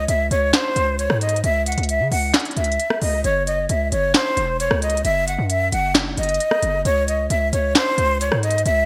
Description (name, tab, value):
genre	hip hop, trap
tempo	133 BPM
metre	4/4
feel	half-time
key	C# harmonic minor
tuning	A4 = 440 Hz
part	breathy jazz flute	melody	0.0-8.9 s	B#4 to F#5	-22 LUFS	equal	none
part	distorted 808-style bass	bass	0.0-8.9 s	E1 to C#3	-25 LUFS	equal	distortion
part	trap drum kit	drums	0.1-8.8 s	handclaps, hi-hat, rim click, snare drum	-24 LUFS	equal	gated reverb
room	moderate plate reverb, RT60 1.3 s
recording	bright 1980s-style digital production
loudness	-20 LUFS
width	mono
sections	0.0-8.9 A section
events	none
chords	0.0 C#m; 3.2 F#5; 6.9 C#m